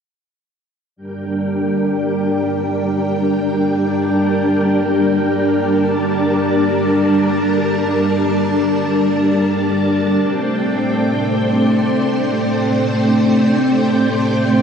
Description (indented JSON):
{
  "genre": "ambient, sequencer-driven space music",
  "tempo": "free time",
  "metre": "none",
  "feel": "none",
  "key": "G minor",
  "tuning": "A4 = 440 Hz",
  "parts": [
    { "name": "string machine, full ensemble", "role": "sustained chords", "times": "1.0-14.6 s", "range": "G3 to A5", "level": "-15 LUFS", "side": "equal", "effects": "ensemble chorus, shimmer reverb" },
    { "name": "bubbling stepped-filter texture", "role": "texture", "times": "1.4-14.6 s", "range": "D4 to D5", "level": "-23 LUFS", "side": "equal", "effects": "chorus, built-in reverb, shimmer reverb" }
  ],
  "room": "wet huge ambient reverb, RT60 8.4 s",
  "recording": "dreamy mix soaked in reverb, cassette tape",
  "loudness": "-14 LUFS",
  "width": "side -6 dB against mid",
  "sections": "1.0-14.6 A section",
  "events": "none",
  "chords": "1.0 Gm; 10.2 Gsus24/A"
}